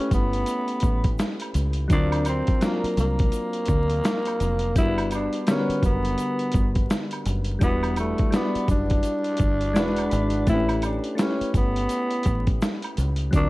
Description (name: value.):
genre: lo-fi hip hop.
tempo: 84 BPM.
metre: 4/4.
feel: swing 61% on 16ths.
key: unclear.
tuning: A4 = 441 Hz.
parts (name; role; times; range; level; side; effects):
growling tenor saxophone; melody; 0.0-13.5 s; A3 to E4; -27 LUFS; equal; low-pass filter.
soft electric-piano-like synth keys; accompaniment; 0.0-13.5 s; D3 to B5; -28 LUFS; left 1 dB; chorus, cassette tape, low-pass filter.
deep dub fingered electric bass; bass; 0.1-13.5 s; E1 to D2; -25 LUFS; equal; none.
dusty soul sampler-style drum kit; drums; 0.1-13.5 s; hi-hat, kick drum, snare drum; -24 LUFS; equal; none.
tube shaker and woodblock; percussion; 0.1-13.5 s; none; -36 LUFS; right 2 dB; none.
room: digital ambience.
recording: vinyl crackle.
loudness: -21 LUFS.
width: side -20 dB against mid.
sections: 0.0-13.5 A section.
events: synth keys fill 9.4-10.5.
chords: 0.0 A9; 1.9 D7alt; 4.8 Gmaj7; 7.6 Em9; 9.8 E9; 10.5 A9.